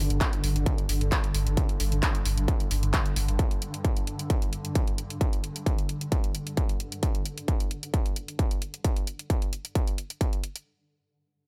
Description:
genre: driving peak-time techno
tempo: 132 BPM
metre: 4/4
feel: straight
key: unclear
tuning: A4 = 440 Hz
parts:
  - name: saturated sub bass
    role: bass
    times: 0.0-3.4 s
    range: G1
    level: -29 LUFS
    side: equal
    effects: tube saturation, sidechain pumping, low-pass filter
  - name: swarming drone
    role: drone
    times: 0.0-7.1 s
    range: G2 to D3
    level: -37 LUFS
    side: equal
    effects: built-in reverb, sidechain pumping
  - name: techno drum kit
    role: drums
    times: 0.1-10.6 s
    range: handclaps, hi-hat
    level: -36 LUFS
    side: equal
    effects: overdrive
  - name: electronic kick drum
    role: drums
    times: 0.2-10.3 s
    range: none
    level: -28 LUFS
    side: equal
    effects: distortion, overdrive
room: digital ambience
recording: echo-heavy mix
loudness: -28 LUFS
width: mono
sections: 0.0-10.7 A section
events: none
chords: 0.0 G5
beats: 0.21 0.66 1.12 | 1.57 2.03 2.48 2.94 | 3.39 3.85 4.30 4.75 | 5.21 5.66 6.12 6.57 | 7.03 7.48 7.94 8.39 | 8.85 9.30 9.75 10.21

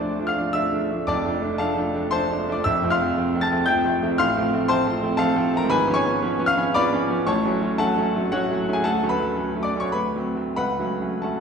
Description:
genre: classical, romantic character piece for solo piano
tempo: 92-120 BPM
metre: 3/4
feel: rubato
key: F# minor from 5.7 s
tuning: A4 = 440 Hz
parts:
  - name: clear concert grand piano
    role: solo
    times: 0.0-11.4 s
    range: F1 to A6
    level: -20 LUFS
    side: equal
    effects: none
room: wet scoring stage reverb, RT60 1.7 s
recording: recorded in a church or concert hall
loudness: -20 LUFS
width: side -6 dB against mid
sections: 0.0-11.4 A section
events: none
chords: 0.0 Dm; 1.1 Dm/F; 2.6 F; 4.2 F/A; 5.7 C#7/G#; 7.3 F#m/A; 8.8 Dmaj7; 9.9 D7; 10.6 F#m/C#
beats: 0.53 | 1.07 1.59 2.12 | 2.65 3.17 3.68 | 4.18 4.69 5.20 | 5.71 6.24 6.76 | 7.28 7.79 8.33 | 8.85 9.38 9.95 | 10.57 11.22

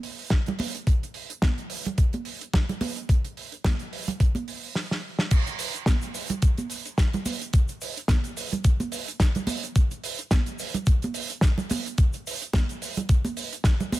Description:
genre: nu-disco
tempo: 108 BPM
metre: 4/4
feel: swing 55% on 16ths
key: none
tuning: none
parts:
  - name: damped 70s drum kit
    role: drums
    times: 0.0-14.0 s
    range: crash cymbal, hi-hat, shaker, snare drum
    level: -30 LUFS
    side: right 1 dB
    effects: none
  - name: electronic kick drum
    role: drums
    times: 0.3-13.8 s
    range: none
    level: -21 LUFS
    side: equal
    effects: none
  - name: congas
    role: percussion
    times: 0.5-14.0 s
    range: none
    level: -31 LUFS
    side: right 3 dB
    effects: none
room: studio ambience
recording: none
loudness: -23 LUFS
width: side -16 dB against mid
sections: 0.0-5.3 A section; 5.3-14.0 B section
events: drum fill 4.8-5.3; stop 4.8-5.3; drop 5.3-14.0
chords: none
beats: 0.31 | 0.87 1.42 1.98 2.54 | 3.09 3.65 4.20 4.76 | 5.31 5.87 6.42 6.98 | 7.54 8.09 8.65 9.20 | 9.76 10.31 10.87 11.42 | 11.98 12.54 13.09 13.65

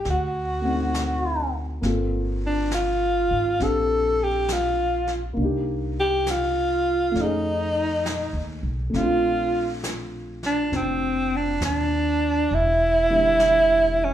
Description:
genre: jazz ballad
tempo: 68 BPM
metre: 4/4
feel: swing 68% on 8ths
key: unclear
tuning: A4 = 440 Hz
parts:
  - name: warm alto saxophone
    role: melody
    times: 0.0-14.1 s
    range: C4 to A4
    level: -21 LUFS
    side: right 1 dB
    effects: slapback echo
  - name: dark upright piano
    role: accompaniment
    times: 0.0-14.1 s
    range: D3 to A4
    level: -29 LUFS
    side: left 2 dB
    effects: slapback echo
  - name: upright bass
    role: bass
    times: 0.1-14.1 s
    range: E1 to F2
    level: -28 LUFS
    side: equal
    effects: none
  - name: jazz brush drum kit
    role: drums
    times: 0.1-14.1 s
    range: brushed snare drum, hi-hat, snare drum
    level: -36 LUFS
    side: left 1 dB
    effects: none
room: moderate club reverb, RT60 0.9 s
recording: live gig heard through the venue's PA, club reverb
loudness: -20 LUFS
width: side -11 dB against mid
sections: 0.0-8.9 A section; 8.9-14.1 B section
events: none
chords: 0.0 D7b9; 1.8 Gm11; 5.4 Cm7; 7.2 F7alt; 8.9 Bbmaj9; 12.5 Em7b5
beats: 0.05 0.93 | 1.82 2.71 3.60 4.49 | 5.37 6.26 7.15 8.05 | 8.94 9.83 10.72 11.61 | 12.50 13.39

